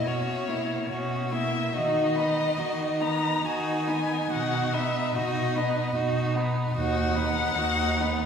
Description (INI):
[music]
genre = classical, slow romantic movement for string quartet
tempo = 63-76 BPM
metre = 3/4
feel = rubato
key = B major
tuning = A4 = 440 Hz
[part]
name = warm violin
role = melody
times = 0.0-8.3 s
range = C#5 to A#5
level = -29 LUFS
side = left 4 dB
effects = none
[part]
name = clear violin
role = second line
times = 0.0-8.3 s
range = D#4 to F#4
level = -32 LUFS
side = equal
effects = none
[part]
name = rich viola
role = accompaniment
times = 0.0-8.3 s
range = A#3 to D#4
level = -32 LUFS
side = right 2 dB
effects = none
[part]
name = rich cello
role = bass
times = 0.1-8.3 s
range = D#2 to D#3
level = -29 LUFS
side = right 1 dB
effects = none
[sound]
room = wet recital hall reverb, RT60 1.7 s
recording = recorded in a church or concert hall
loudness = -24 LUFS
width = side -7 dB against mid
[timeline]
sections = 0.0-8.3 A section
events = none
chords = 0.0 F#7/B; 1.7 B/D#; 4.3 B; 6.8 B/D#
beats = 0.06 0.90 | 1.74 2.58 3.45 | 4.31 5.15 5.96 | 6.76 7.57